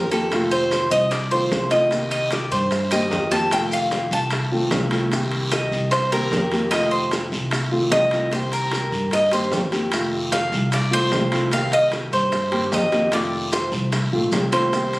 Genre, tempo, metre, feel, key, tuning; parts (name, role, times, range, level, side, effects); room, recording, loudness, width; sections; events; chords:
latin, Cuban son and guajira; 150 BPM; 4/4; straight; A4 = 439 Hz
nylon-string guitar; accompaniment; 0.0-15.0 s; C3 to G4; -24 LUFS; equal
Cuban tres; arpeggios; 0.0-15.0 s; A4 to A5; -21 LUFS; equal
upright bass; bass; 0.0-15.0 s; Bb1 to G2; -26 LUFS; equal
guiro; percussion; 0.1-15.0 s; -32 LUFS; left 1 dB
maracas; percussion; 0.1-15.0 s; -37 LUFS; left 1 dB
timbales; percussion; 0.1-15.0 s; -29 LUFS; right 1 dB
bongos; percussion; 0.3-15.0 s; -30 LUFS; left 1 dB
moderate studio reverb, RT60 0.6 s; recorded on a phone in the room, studio reverb, compression; -18 LUFS; side -20 dB against mid
0.0-15.0 A section
Cuban tres solo 0.0-15.0
0.3 F7; 1.9 Cm7; 3.5 F7; 5.1 Cm7; 6.7 F7; 8.3 Cm7; 9.9 F7; 11.5 Cm7; 13.1 F7